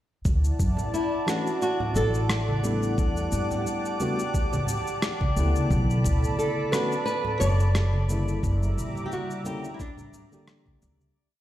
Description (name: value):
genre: sunset chillout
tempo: 88 BPM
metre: 4/4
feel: swing 55% on 16ths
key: D major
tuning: A4 = 437 Hz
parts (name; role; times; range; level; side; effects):
- lush unison pad; sustained chords; 0.2-11.1 s; G3 to D6; -34 LUFS; equal; chorus
- drifting glass-harmonics texture; texture; 0.7-11.2 s; D5 to D6; -36 LUFS; left 2 dB; chorus, built-in reverb
- upright bass; bass; 0.3-11.0 s; F#1 to G2; -24 LUFS; equal; none
- electronic kick drum; drums; 0.3-10.8 s; none; -27 LUFS; equal; none
- electronic shaker and rim click; drums; 0.3-11.1 s; none; -33 LUFS; equal; overdrive
- congas and bongos; percussion; 0.8-11.1 s; none; -33 LUFS; right 1 dB; none
- flamenco guitar; melody; 0.9-10.8 s; D4 to D5; -30 LUFS; right 1 dB; tape echo
- tine electric piano; accompaniment; 1.3-11.1 s; C#3 to G4; -32 LUFS; left 1 dB; auto-pan, tape echo
room: light reverb, small room ambience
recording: played on a big sound system in a bare room, stone room reverb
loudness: -23 LUFS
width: side -13 dB against mid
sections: 0.3-11.2 groove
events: fade-out 7.5-11.2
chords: 0.3 Dadd9; 3.0 Em11; 5.7 Bm9; 8.4 F#7b9b13 (rootless)